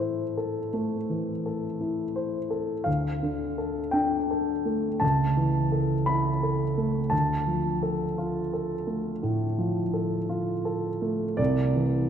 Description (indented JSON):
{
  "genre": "classical, romantic nocturne for solo piano",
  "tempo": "56 BPM",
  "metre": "4/4",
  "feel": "rubato",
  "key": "unclear",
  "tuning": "A4 = 440 Hz",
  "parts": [
    { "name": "warm grand piano", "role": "solo", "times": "0.0-12.1 s", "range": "C2 to B5", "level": "-25 LUFS", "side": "equal", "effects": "none" }
  ],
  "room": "wet concert hall reverb, RT60 2.5 s",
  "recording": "dark, warm production",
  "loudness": "-25 LUFS",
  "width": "side -8 dB against mid",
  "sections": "0.0-12.1 A section",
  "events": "none",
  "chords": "0.0 Am; 2.9 Dm; 5.0 A/C#; 7.1 Dm; 11.4 Am/C (rootless)"
}